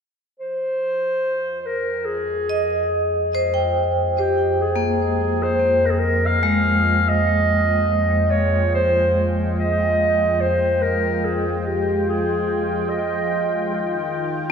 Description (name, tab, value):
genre	ambient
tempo	72 BPM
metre	4/4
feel	straight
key	F minor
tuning	A4 = 441 Hz
part	mellow clarinet	melody	0.4-13.7 s	G4 to F5	-20 LUFS	equal	ping-pong delay
part	warm analog pad	sustained chords	0.4-14.5 s	Eb3 to G5	-28 LUFS	right 1 dB	chorus
part	deep rumbling drone	bass	2.3-14.5 s	Eb2 to F2	-25 LUFS	equal	built-in reverb, phaser
part	vibraphone with hard mallets	arpeggios	2.5-14.5 s	Ab3 to G5	-24 LUFS	equal	ping-pong delay
room	wet scoring stage reverb, RT60 2.1 s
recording	none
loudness	-18 LUFS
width	side -6 dB against mid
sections	0.4-14.5 A section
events	fade-in on analog synth pad 0.4-14.5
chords	0.4 Fm9; 13.7 Eb